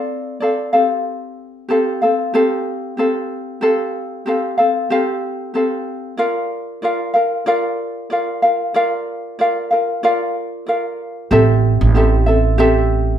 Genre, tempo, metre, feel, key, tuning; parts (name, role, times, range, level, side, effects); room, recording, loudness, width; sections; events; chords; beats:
acoustic pop; 94 BPM; 4/4; swing 55% on 16ths; F major; A4 = 440 Hz
ukulele; accompaniment; 0.0-13.2 s; C4 to F5; -16 LUFS; equal
upright bass; bass; 11.3-13.2 s; A1; -14 LUFS; right 2 dB
moderate large studio reverb, RT60 0.9 s; band playing live in one room; -15 LUFS; side -10 dB against mid
0.0-11.3 A section; 11.3-13.2 B section
0.0 Dm7; 0.7 Fadd9; 6.2 Bb; 11.3 Am7
0.42 | 1.06 1.70 2.34 2.98 | 3.62 4.26 4.90 5.54 | 6.19 6.83 7.47 8.11 | 8.75 9.39 10.03 10.67 | 11.31 11.96 12.60